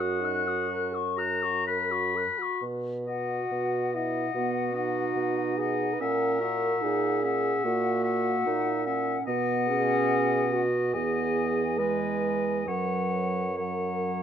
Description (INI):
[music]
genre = classical, slow romantic movement for wind quintet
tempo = 72 BPM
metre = 4/4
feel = uneven beats, rubato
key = B major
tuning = A4 = 436 Hz
[part]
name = mellow hollow silver concert flute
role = melody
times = 0.0-14.2 s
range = F#5 to F#6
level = -33 LUFS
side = left 9 dB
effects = none
[part]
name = clear oboe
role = second line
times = 0.0-14.2 s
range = C#5 to B5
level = -32 LUFS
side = left 4 dB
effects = none
[part]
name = clear French horn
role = accompaniment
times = 0.0-14.2 s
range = D#4 to B4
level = -31 LUFS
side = equal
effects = none
[part]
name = dark clarinet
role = accompaniment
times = 0.0-14.2 s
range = F#3 to F#4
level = -33 LUFS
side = right 10 dB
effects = none
[part]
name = dark bassoon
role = bass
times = 0.0-14.2 s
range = E2 to B2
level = -31 LUFS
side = right 2 dB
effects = none
[sound]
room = moderate recital hall reverb, RT60 1.5 s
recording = close, detailed microphones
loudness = -25 LUFS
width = side -9 dB against mid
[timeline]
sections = 0.0-2.6 A section; 2.6-14.2 B section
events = none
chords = 0.0 B/F# (rootless); 0.7 F#; 2.6 B; 6.0 F#7/A#; 9.3 B; 10.9 Emaj7; 12.7 F#